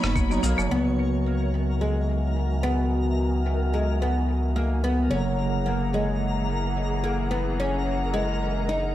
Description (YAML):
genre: organic downtempo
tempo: 109 BPM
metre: 4/4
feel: swing 55% on 16ths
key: C# dorian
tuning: A4 = 440 Hz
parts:
  - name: bright symphonic string section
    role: sustained chords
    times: 0.0-8.9 s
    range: D#3 to B5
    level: -32 LUFS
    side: left 1 dB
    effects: sidechain pumping, low-pass filter
  - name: marimba with hard mallets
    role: arpeggios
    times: 0.0-0.7 s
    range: A#3 to D#4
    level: -30 LUFS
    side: equal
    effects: analog delay
  - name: warm sub bass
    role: bass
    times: 0.0-8.9 s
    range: F#1 to C#2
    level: -26 LUFS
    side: equal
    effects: none
  - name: electronic rim click and shaker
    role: drums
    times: 0.0-0.7 s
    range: none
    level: -32 LUFS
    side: equal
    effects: analog delay
  - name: tabla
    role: percussion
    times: 0.0-0.7 s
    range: none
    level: -38 LUFS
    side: right 1 dB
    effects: none
  - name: twinkling granular texture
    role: texture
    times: 0.0-8.9 s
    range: A#4 to C#5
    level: -37 LUFS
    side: left 2 dB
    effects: built-in reverb
  - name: tine electric piano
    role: accompaniment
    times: 0.3-8.9 s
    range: C#3 to D#4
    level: -30 LUFS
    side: right 2 dB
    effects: medium stereo tremolo, vintage 12-bit sampler grit, sidechain pumping, analog delay
  - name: oud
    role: melody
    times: 0.4-8.9 s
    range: G#3 to D#4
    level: -28 LUFS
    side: left 1 dB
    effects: tape echo
room: light reverb, small room ambience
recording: echo-heavy mix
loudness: -22 LUFS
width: side -13 dB against mid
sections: 0.7-8.9 A section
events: filter sweep on string section 0.7-8.9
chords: 0.0 Bmaj7; 0.7 C#m11; 5.1 F#9